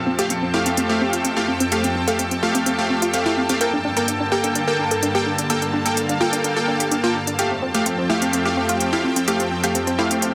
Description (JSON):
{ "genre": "progressive house", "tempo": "127 BPM", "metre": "4/4", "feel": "straight", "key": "F major", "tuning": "A4 = 445 Hz", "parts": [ { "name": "supersaw pad", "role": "sustained chords", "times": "0.0-10.3 s", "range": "F2 to A5", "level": "-27 LUFS", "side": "equal", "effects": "none" }, { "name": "drifting glass-harmonics texture", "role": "texture", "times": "0.0-10.3 s", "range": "A4 to A5", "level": "-35 LUFS", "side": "equal", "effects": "none" }, { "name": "unison pluck", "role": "arpeggios", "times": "0.1-10.3 s", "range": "C4 to Bb4", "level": "-26 LUFS", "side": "equal", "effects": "delay" }, { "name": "supersaw stab", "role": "stabs", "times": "0.2-10.3 s", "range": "A3 to G5", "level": "-25 LUFS", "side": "equal", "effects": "cassette tape, delay" }, { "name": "electronic hi-hat", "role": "drums", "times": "0.2-10.3 s", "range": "none", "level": "-27 LUFS", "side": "equal", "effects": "none" }, { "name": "reverse cymbal", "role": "sound effects", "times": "10.2-10.3 s", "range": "none", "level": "barely audible", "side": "none", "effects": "none" } ], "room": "wet lush hall reverb, RT60 1.9 s", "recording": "dense, heavily limited modern master", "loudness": "-20 LUFS", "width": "mono", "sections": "0.0-10.3 A section", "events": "filter sweep on synth pluck 0.0-10.3", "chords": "0.0 Fadd9; 3.6 Gmadd9; 7.4 Fadd9" }